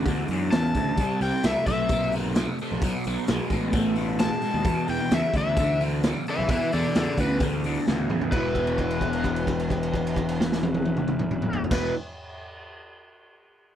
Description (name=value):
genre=blues rock power trio and southern rock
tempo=131 BPM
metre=4/4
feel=straight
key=unclear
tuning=A4 = 439 Hz
part: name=crunchy overdriven guitar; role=riff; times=0.0-11.9 s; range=E2 to A#3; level=-27 LUFS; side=equal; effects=phaser
part: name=fuzz picked electric bass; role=bass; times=0.0-11.9 s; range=E1 to F#2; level=-28 LUFS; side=equal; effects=overdrive
part: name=raw garage drum kit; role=drums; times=0.1-11.8 s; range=crash cymbal, hi-hat, kick drum, snare drum, toms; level=-28 LUFS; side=equal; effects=none
part: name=overdriven slide guitar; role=melody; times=0.5-11.9 s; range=A4 to A5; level=-28 LUFS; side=left 2 dB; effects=none
room=little or no reverb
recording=none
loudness=-22 LUFS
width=side -10 dB against mid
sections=0.0-8.3 A section; 8.3-12.0 B section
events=drum fill 7.9-8.3; held note 8.3-11.7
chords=0.0 Esus2; 1.0 Cmaj7; 2.8 B7(no3); 4.7 E5